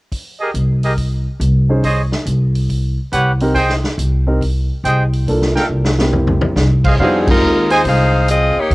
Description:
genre	jazz, big band swing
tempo	140 BPM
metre	4/4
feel	swing 66% on 8ths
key	unclear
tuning	A4 = 439 Hz
part	swinging big-band drum kit	drums	0.1-8.7 s	crash cymbal, hi-hat, kick drum, snare drum, toms	-20 LUFS	equal	cassette tape
part	clear trumpet section	stabs	0.4-7.8 s	G4 to Ab5	-17 LUFS	right 1 dB	cassette tape, plate reverb
part	upright bass	bass	0.5-8.7 s	C2 to F2	-16 LUFS	equal	none
part	warm baby grand piano	accompaniment	1.7-8.2 s	G3 to C5	-19 LUFS	equal	cassette tape, plate reverb
part	bright saxophone section	melody	7.0-8.7 s	F3 to F5	-14 LUFS	left 1 dB	plate reverb
room	light reverb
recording	home recording on cassette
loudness	-13 LUFS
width	side -21 dB against mid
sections	0.1-7.0 A section; 7.0-8.7 B section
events	drum fill 5.7-6.6; band accent 7.2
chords	0.1 Cm; 2.7 Cmmaj7; 3.6 Abmaj7; 5.3 Gm9; 6.1 C7; 7.0 Fm7

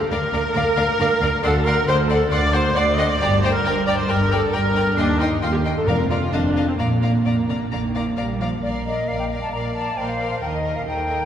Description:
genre	quick classical-period movement for symphony orchestra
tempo	135 BPM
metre	4/4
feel	straight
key	Bb major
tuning	A4 = 440 Hz
part	rich studio viola section	accompaniment	0.0-11.3 s	Bb3 to Eb5	-21 LUFS	equal	none
part	rich studio violin section	melody	0.1-11.3 s	Eb5 to C6	-32 LUFS	left 2 dB	none
part	clear studio violin section	second line	0.1-11.3 s	Bb4 to G5	-28 LUFS	left 2 dB	none
part	rich studio double bass section	bass	0.1-11.3 s	F1 to Eb2	-26 LUFS	right 1 dB	none
part	warm studio cello section	bass	0.1-11.3 s	D2 to G3	-24 LUFS	right 1 dB	none
part	timpani	percussion	5.9-6.3 s	F2	-28 LUFS	equal	none
part	bright concert flute	second line	8.6-11.3 s	D5 to Bb5	-26 LUFS	left 1 dB	none
room	wet cathedral reverb, RT60 5.2 s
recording	recorded in a church or concert hall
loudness	-18 LUFS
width	side -9 dB against mid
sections	0.0-8.6 A section; 8.6-11.3 A section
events	none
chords	0.0 Bb/D; 1.4 D7; 3.2 Gm; 5.0 Cm/Eb; 5.9 Bb/F; 6.3 F7(no3); 6.8 Bb; 10.4 Eb

